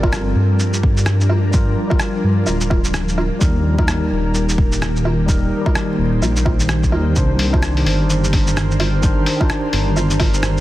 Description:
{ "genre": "future garage", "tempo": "128 BPM", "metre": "4/4", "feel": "swing 60% on 16ths", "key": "G minor", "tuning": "A4 = 440 Hz", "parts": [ { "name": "tine electric piano", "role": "accompaniment", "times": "0.0-10.6 s", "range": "Eb3 to C5", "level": "-23 LUFS", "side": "left 2 dB", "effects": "medium stereo tremolo, sidechain pumping, digital delay" }, { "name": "ethereal airy pad", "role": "sustained chords", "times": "0.0-10.6 s", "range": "Eb3 to C5", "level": "-24 LUFS", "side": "right 1 dB", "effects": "ensemble chorus, built-in reverb, sidechain pumping" }, { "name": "dark detuned saw bass", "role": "bass", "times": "0.0-10.6 s", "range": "D1 to G2", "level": "-18 LUFS", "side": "equal", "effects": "none" }, { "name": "electronic kick drum", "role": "drums", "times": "0.0-10.3 s", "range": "none", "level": "-18 LUFS", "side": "equal", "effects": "overdrive, small room ambience" }, { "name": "lo-fi sampler-style drum kit", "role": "drums", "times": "0.0-10.6 s", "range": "hi-hat, rim click, shaker, woodblock", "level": "-23 LUFS", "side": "right 1 dB", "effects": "small room ambience, soft clipping on snare" }, { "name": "drifting glass-harmonics texture", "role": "texture", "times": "7.8-10.6 s", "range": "Bb4", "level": "-31 LUFS", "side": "right 5 dB", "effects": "chorus, built-in reverb" } ], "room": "little or no reverb", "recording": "dense, heavily limited modern master, vinyl crackle", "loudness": "-14 LUFS", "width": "side -15 dB against mid", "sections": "0.0-10.6 A section", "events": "none", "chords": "0.0 Gm7; 3.4 Eb; 7.2 Cmadd9" }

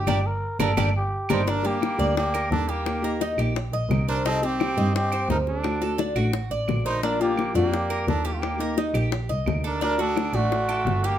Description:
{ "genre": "latin, Cuban son and guajira", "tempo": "172 BPM", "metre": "4/4", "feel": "straight", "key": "G minor", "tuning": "A4 = 440 Hz", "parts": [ { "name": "trumpet with cup mute", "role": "melody", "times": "0.0-11.2 s", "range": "F4 to C5", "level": "-28 LUFS", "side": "equal", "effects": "none" }, { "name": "nylon-string guitar", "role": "accompaniment", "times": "0.0-11.2 s", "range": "C3 to G4", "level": "-29 LUFS", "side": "left 2 dB", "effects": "none" }, { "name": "Cuban tres", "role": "arpeggios", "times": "0.0-11.2 s", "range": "D4 to Eb5", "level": "-30 LUFS", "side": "right 1 dB", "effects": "none" }, { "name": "clear double bass", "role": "bass", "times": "0.0-11.2 s", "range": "G1 to G2", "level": "-27 LUFS", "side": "right 1 dB", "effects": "none" }, { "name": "bongos", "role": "percussion", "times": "0.1-11.2 s", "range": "none", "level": "-30 LUFS", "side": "left 6 dB", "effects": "none" }, { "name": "claves", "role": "percussion", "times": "0.1-10.9 s", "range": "none", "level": "-35 LUFS", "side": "right 3 dB", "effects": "none" }, { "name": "brilliant trumpet", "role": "second line", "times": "1.3-11.2 s", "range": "A3 to Eb4", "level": "-32 LUFS", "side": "right 5 dB", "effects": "none" } ], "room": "moderate studio reverb, RT60 0.7 s", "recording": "none", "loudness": "-22 LUFS", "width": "side -11 dB against mid", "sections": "0.0-1.5 A section; 1.5-11.2 A section", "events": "band accent 0.1-1.5", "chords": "0.1 Gm; 2.9 Eb; 4.3 Cm; 5.6 D; 7.0 Bb; 8.4 Eb; 9.8 D" }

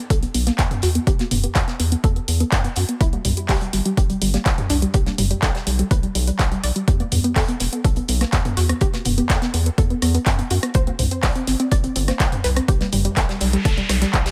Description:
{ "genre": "progressive house", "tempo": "124 BPM", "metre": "4/4", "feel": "straight", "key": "E minor", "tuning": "A4 = 440 Hz", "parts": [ { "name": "analog pluck", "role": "arpeggios", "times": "0.0-14.3 s", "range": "G3 to D5", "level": "-27 LUFS", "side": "equal", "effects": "chorus, sidechain pumping, dub echo" }, { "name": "round analog bass", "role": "bass", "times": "0.1-14.3 s", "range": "E1 to F#2", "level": "-24 LUFS", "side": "equal", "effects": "tube saturation, sidechain pumping" }, { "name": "damped 70s drum kit", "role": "drums", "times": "0.1-14.3 s", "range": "hi-hat, snare drum", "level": "-36 LUFS", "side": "equal", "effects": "high-pass filter on hats, high-pass filter on snare, high-pass filter on room" }, { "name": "deep house drum kit", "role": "drums", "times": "0.1-14.3 s", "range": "handclaps, hi-hat, rim click", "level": "-28 LUFS", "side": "equal", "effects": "none" }, { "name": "electronic kick drum", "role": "drums", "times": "0.1-14.2 s", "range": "none", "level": "-22 LUFS", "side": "equal", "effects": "none" }, { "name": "electronic congas and toms", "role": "percussion", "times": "0.5-13.8 s", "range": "none", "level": "-29 LUFS", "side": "equal", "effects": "sidechain pumping on perc, sidechain pumping on toms" }, { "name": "noise sweep", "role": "sound effects", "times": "13.0-14.3 s", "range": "none", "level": "-31 LUFS", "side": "equal", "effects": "none" } ], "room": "little or no reverb", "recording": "none", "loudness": "-20 LUFS", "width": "mono", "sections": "0.0-14.3 A section", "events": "filter sweep on synth arpeggio sound 0.0-14.3; noise sweep 13.0-14.3", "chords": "0.0 E5; 3.0 C5; 4.9 G; 6.9 E5; 10.7 C5; 12.7 G" }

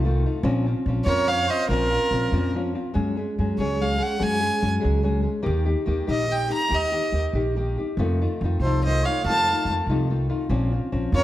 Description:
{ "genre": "mexican folk, mariachi", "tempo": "95 BPM (dotted quarters)", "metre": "6/8", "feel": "straight", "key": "Bb minor", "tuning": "A4 = 445 Hz", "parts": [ { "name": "nylon-string guitar", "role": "accompaniment", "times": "0.0-11.2 s", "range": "F2 to Ab4", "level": "-26 LUFS", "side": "left 2 dB", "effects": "none" }, { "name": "upright bass", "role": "bass", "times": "0.0-11.2 s", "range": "Bb1 to Gb2", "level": "-24 LUFS", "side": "equal", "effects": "none" }, { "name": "clear violin", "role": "melody", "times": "1.0-11.2 s", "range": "Bb4 to Bb5", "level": "-24 LUFS", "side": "right 1 dB", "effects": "none" }, { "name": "warm trumpet", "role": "second line", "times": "1.1-2.5, 8.6-11.2 s", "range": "F4 to F5", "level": "-31 LUFS", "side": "right 4 dB", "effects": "none" } ], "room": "moderate recital hall reverb, RT60 1.6 s", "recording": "dark, warm production", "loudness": "-21 LUFS", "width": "side -14 dB against mid", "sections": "0.0-3.0 A section; 3.0-11.2 A section", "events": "none", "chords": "0.4 Bbmadd9; 3.0 Gbsus2; 5.5 Eb; 8.0 F7; 10.5 Bbmadd9" }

